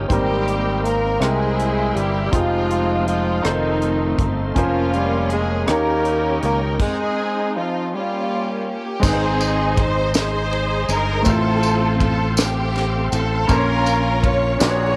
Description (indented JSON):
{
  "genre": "slow gospel",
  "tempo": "54 BPM (dotted quarters)",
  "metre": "6/8",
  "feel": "straight",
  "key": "Ab major",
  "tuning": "A4 = 440 Hz",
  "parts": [
    { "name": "rich studio string section", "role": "melody", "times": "0.0-15.0 s", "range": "Ab3 to Db5", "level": "-25 LUFS", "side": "equal", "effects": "none" },
    { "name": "clear baby grand piano", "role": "accompaniment", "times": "0.0-15.0 s", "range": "Ab2 to Ab5", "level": "-26 LUFS", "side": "equal", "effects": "none" },
    { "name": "bright tonewheel organ", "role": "sustained chords", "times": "0.0-15.0 s", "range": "Ab3 to Eb6", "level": "-33 LUFS", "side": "equal", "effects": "slow rotary speaker, overdrive, chorus vibrato" },
    { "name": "muted French horn section", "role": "sustained chords", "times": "0.0-6.8 s", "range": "Eb3 to Eb4", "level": "-35 LUFS", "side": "equal", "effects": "none" },
    { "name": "fingered electric bass", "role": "bass", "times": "0.0-15.0 s", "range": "F1 to Eb2", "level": "-25 LUFS", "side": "equal", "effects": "none" },
    { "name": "breathy tenor saxophone", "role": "melody", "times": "0.1-8.8 s", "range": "Eb3 to Bb3", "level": "-26 LUFS", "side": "equal", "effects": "none" },
    { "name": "tight funk drum kit", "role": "drums", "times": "0.1-14.8 s", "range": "crash cymbal, hi-hat, kick drum, ride cymbal, rim click, snare drum", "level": "-25 LUFS", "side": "equal", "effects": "none" },
    { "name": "tambourine", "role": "percussion", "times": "9.0-14.9 s", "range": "none", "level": "-31 LUFS", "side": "equal", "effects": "none" }
  ],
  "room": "moderate spring reverb, RT60 2.2 s",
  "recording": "none",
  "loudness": "-20 LUFS",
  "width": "mono",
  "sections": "0.0-9.0 A section; 9.0-15.0 B section",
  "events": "stop 6.8-9.0",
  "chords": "0.1 Abmaj9; 1.2 C7; 2.3 Fm9; 3.4 F7; 4.6 Bbm9/F; 5.7 Eb7; 6.8 Ab; 7.9 Gm7b5; 9.0 Ab; 11.3 F/A; 13.5 Bbm",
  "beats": "| 0.10 1.21 | 2.33 3.45 | 4.56 5.68 | 6.80 7.92 | 9.03 10.15 | 11.26 12.38 | 13.49 14.61"
}